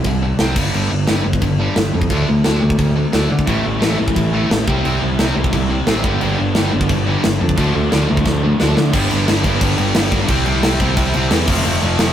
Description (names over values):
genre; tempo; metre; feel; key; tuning
punk rock; 176 BPM; 4/4; straight; unclear; A4 = 438 Hz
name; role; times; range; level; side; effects
distorted electric guitar; riff; 0.0-12.1 s; F2 to D4; -20 LUFS; equal; overdrive
modern bright picked electric bass; bass; 0.0-12.1 s; F1 to D3; -18 LUFS; equal; none
tight metal drum kit; drums; 0.0-12.1 s; crash cymbal, kick drum, snare drum; -18 LUFS; equal; none
distorted electric guitar; riff; 3.5-12.1 s; G2 to F4; -22 LUFS; equal; overdrive
room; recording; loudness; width
light reverb; rough rehearsal-room recording, warm saturation; -14 LUFS; side -10 dB against mid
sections
0.0-8.9 A section; 8.9-12.1 B section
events
drum fill 8.3-8.9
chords
0.0 C5; 0.6 G5; 2.1 D5; 3.5 Am; 4.7 C; 6.0 G; 7.6 Dm; 8.9 G; 10.3 C; 11.5 F